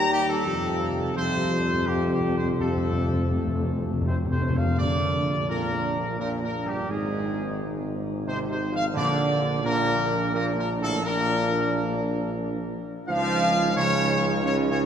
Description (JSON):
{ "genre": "classical", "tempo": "87 BPM", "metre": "3/4", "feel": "straight", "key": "Bb major", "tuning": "A4 = 436 Hz", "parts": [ { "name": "mellow trumpet section", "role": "melody", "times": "0.0-14.8 s", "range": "G4 to F5", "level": "-27 LUFS", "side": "left 1 dB", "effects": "none" }, { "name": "mellow French horn section", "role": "sustained chords", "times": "0.0-14.9 s", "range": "G3 to G4", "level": "-32 LUFS", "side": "left 3 dB", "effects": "none" }, { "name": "warm trombone section", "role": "sustained chords", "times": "0.0-14.9 s", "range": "G2 to G3", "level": "-30 LUFS", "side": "right 2 dB", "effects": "none" }, { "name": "warm tuba", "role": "bass", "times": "0.0-14.9 s", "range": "Ab1 to F2", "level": "-29 LUFS", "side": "right 2 dB", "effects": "none" }, { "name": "timpani", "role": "percussion", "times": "0.5-5.8, 9.0-10.0 s", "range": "F2 to Bb2", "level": "-29 LUFS", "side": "left 1 dB", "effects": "none" } ], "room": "wet cathedral reverb, RT60 4.7 s", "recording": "none", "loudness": "-23 LUFS", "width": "side -8 dB against mid", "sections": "0.0-4.8 A section; 4.8-14.9 B section", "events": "timpani fill 0.5-4.8", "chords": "0.5 Fadd9; 4.8 Bb; 6.9 Ab; 9.0 Bb; 13.1 Dbadd9" }